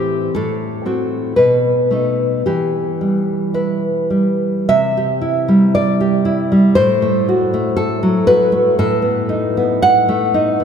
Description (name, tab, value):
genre	romantic piece for solo classical guitar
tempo	50-61 BPM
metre	2/4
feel	rubato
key	unclear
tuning	A4 = 440 Hz
part	nylon-string guitar	solo	0.0-10.6 s	A2 to F#5	-13 LUFS	equal	none
room	wet cathedral reverb, RT60 4.8 s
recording	recorded in a church or concert hall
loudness	-13 LUFS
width	side -7 dB against mid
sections	0.0-4.7 A section; 4.7-10.6 B section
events	none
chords	0.3 F#dim/A; 1.3 B7; 2.4 Em; 4.7 C; 6.8 F#dim/A; 8.8 B7/A